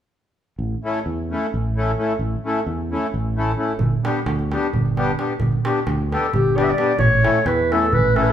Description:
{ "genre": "balkan folk, Balkan wedding band", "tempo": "262 BPM (eighths)", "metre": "7/8", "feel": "straight", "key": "A mixolydian", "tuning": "A4 = 440 Hz", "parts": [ { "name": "sustaining fretless electric bass", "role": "bass", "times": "0.6-8.3 s", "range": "G1 to E2", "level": "-24 LUFS", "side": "equal", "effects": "none" }, { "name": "accordion", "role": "accompaniment", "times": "0.8-8.3 s", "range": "G3 to A4", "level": "-23 LUFS", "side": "left 2 dB", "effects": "none" }, { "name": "darbuka", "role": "percussion", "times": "3.8-8.3 s", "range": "none", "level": "-22 LUFS", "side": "right 3 dB", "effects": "none" }, { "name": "warm clarinet", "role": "melody", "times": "6.1-8.3 s", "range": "G4 to E5", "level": "-18 LUFS", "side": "left 1 dB", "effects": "none" } ], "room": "wet large studio reverb, RT60 1.1 s", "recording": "band playing live in one room", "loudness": "-18 LUFS", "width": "side -10 dB against mid", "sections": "0.6-7.0 A section; 7.0-8.3 B section", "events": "none", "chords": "0.6 A; 3.8 G; 7.0 A" }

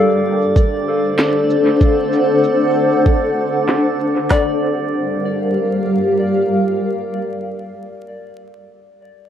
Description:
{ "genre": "ambient dub", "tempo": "96 BPM", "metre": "4/4", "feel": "swing 58% on 16ths", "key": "G minor", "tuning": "A4 = 438 Hz", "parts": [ { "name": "granular cloud pad", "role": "sustained chords", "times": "0.0-7.6 s", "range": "G3 to F#5", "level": "-16 LUFS", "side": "equal", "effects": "built-in reverb" }, { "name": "soft synth bell", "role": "arpeggios", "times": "0.0-9.3 s", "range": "A4 to D5", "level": "-21 LUFS", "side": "left 2 dB", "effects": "chorus, phaser, low-pass filter, dub echo" }, { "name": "drifting glass-harmonics texture", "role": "texture", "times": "0.0-4.3 s", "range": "D5", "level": "-28 LUFS", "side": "right 6 dB", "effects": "chorus, built-in reverb" }, { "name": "electronic shaker and snare drum", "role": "drums", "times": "0.6-4.1 s", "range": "none", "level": "-21 LUFS", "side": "equal", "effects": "low-pass filter on perc, low-pass filter on snare, low-pass filter on room, dub echo" }, { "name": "organic electronic drum kit", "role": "drums", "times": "0.6-4.5 s", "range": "handclaps, kick drum, snare drum", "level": "-14 LUFS", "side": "equal", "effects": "none" } ], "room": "wet spring reverb, RT60 2.3 s", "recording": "vinyl crackle", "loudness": "-14 LUFS", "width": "side -9 dB against mid", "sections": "0.0-4.3 A section; 4.3-6.8 B section", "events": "filter sweep on drum 0.0-4.3; filter sweep on synth bell 0.0-4.3", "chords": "0.0 D7; 4.3 Gm7" }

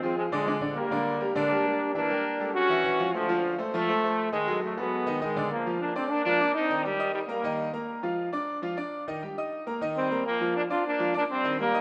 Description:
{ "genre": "latin", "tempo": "202 BPM", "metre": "4/4", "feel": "straight", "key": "Bb major", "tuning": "A4 = 440 Hz", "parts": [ { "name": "brilliant trombone section", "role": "melody", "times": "0.0-7.7, 10.0-11.8 s", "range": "D3 to Gb4", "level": "-29 LUFS", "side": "equal", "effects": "none" }, { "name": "bright concert grand piano", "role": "accompaniment", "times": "0.0-11.8 s", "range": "D3 to Eb6", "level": "-32 LUFS", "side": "equal", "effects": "none" } ], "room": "wet plate reverb, RT60 3.1 s", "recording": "rough home demo mix", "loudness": "-28 LUFS", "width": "mono", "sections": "0.0-5.5 A section; 5.5-11.8 B section", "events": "none", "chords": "0.2 Ddim; 0.8 Gm/D; 2.0 Em7b5; 2.5 A7b13; 3.1 Dm7; 4.3 B6; 5.5 Bb; 6.7 Eb; 7.9 Bb; 9.1 Eb6; 10.3 Bb" }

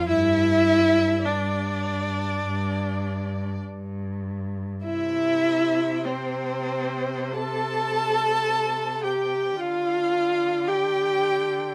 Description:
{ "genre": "classical, slow romantic movement for string quartet", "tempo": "45-56 BPM", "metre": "4/4", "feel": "rubato", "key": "C major", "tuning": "A4 = 441 Hz", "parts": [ { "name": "rich violin", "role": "melody", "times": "0.0-11.7 s", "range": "C5 to A5", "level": "-35 LUFS", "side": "equal", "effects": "none" }, { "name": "warm violin", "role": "second line", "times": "0.0-11.7 s", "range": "C5 to A5", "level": "-34 LUFS", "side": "equal", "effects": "none" }, { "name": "warm viola", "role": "accompaniment", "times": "0.0-11.7 s", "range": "C4 to A4", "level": "-26 LUFS", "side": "equal", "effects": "none" }, { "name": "rich cello", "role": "bass", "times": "0.1-11.7 s", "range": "G2 to D3", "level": "-32 LUFS", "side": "equal", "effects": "none" } ], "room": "light reverb", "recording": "none", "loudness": "-24 LUFS", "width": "mono", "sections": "0.0-11.7 A section", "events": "none", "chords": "0.1 G5; 4.8 C; 9.6 G5/D" }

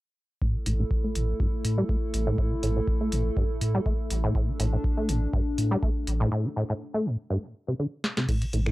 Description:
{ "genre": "acid house", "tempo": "122 BPM", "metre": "4/4", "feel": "swing 53% on 16ths", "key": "unclear", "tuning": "A4 = 440 Hz", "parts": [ { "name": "warbly tape-like pad", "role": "sustained chords", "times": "0.6-6.3 s", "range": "A3 to A4", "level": "-33 LUFS", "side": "equal", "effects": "chorus, built-in reverb, sidechain pumping" }, { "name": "acid bass, saw", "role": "riff", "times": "0.4-8.7 s", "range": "G2 to A3", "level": "-28 LUFS", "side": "equal", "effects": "wide subtle chorus, cassette tape, sidechain pumping, analog delay" }, { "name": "electronic kick drum", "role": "drums", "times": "0.4-8.4 s", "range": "none", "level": "-28 LUFS", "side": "equal", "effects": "none" }, { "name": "warm sub bass", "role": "bass", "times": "0.7-8.7 s", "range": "A1 to A2", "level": "-26 LUFS", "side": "equal", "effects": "tube saturation, sidechain pumping" }, { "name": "booming analog drum machine", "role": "drums", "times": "0.7-8.7 s", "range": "crash cymbal, finger snaps, hi-hat, snare drum", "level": "-32 LUFS", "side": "equal", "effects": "none" } ], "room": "little or no reverb", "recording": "dry, gritty hardware recording", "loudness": "-24 LUFS", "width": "side -18 dB against mid", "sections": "0.4-8.3 A section", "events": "break 6.3-8.3; drum fill 8.0", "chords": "0.4 A5" }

